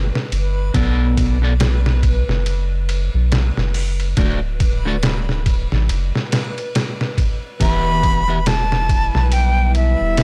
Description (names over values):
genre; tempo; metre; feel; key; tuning
trip hop; 70 BPM; 4/4; swing 59% on 16ths; E minor; A4 = 436 Hz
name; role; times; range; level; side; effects
round analog bass; bass; 0.0-10.2 s; D1 to B1; -20 LUFS; equal; transformer saturation
backwards swelling texture; texture; 0.0-10.2 s; B4; -36 LUFS; equal; built-in reverb
trip hop sampler-style drum kit; drums; 0.2-10.2 s; hi-hat, kick drum, ride cymbal, snare drum; -23 LUFS; equal; none
electric guitar at the edge of break-up; accompaniment; 0.7-8.4 s; B2 to E5; -26 LUFS; equal; harmonic tremolo, tape echo
bright concert flute; melody; 7.6-10.2 s; E5 to B5; -22 LUFS; equal; dub echo
deep dark ambient pad; sustained chords; 8.8-10.2 s; G3 to B4; -30 LUFS; equal; chorus, built-in reverb, vintage 12-bit sampler grit
room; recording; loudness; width
digital ambience; dry, gritty hardware recording; -18 LUFS; mono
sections
0.0-10.2 A section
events
none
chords
0.0 G; 0.7 Bm7; 4.2 D; 7.6 Em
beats
| 0.74 1.60 2.46 3.32 | 4.17 5.03 5.89 6.75 | 7.60 8.46 9.32 10.17